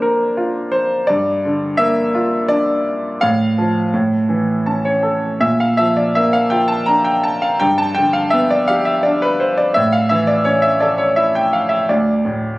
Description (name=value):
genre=classical, lyrical solo piano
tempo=83 BPM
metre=3/4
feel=rubato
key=unclear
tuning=A4 = 440 Hz
part: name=bright grand piano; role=solo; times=0.0-12.6 s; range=D2 to Bb5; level=-14 LUFS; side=equal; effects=none
room=moderate scoring stage reverb, RT60 1.8 s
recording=recorded on a phone in the room, club ambience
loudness=-14 LUFS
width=side -20 dB against mid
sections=0.0-12.6 A section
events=grand piano fill 4.3-5.4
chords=0.0 Bb/D; 1.1 Gm7; 3.2 F/A; 3.9 A; 5.4 Bb; 7.6 G; 9.8 A; 11.9 D5